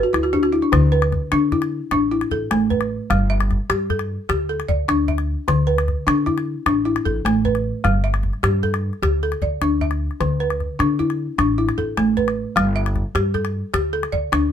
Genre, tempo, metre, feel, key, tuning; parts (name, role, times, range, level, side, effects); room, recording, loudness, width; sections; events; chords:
west african traditional, West African string and xylophone music; 101 BPM (dotted quarters); 12/8; straight; A4 = 437 Hz
balafon; arpeggios; 0.0-14.5 s; D3 to E5; -20 LUFS; left 1 dB
upright bass; bass; 0.1-14.5 s; G1 to D3; -23 LUFS; equal
calabash; percussion; 0.1-14.4 s; -24 LUFS; left 5 dB
little or no reverb; minimal, uncompressed stereo recording; -18 LUFS; side -9 dB against mid
0.7-14.5 A section
balafon fill 0.0-0.7
0.0 G; 0.7 D5; 3.1 G5; 5.5 D5; 7.8 G5; 10.2 D5; 12.6 G5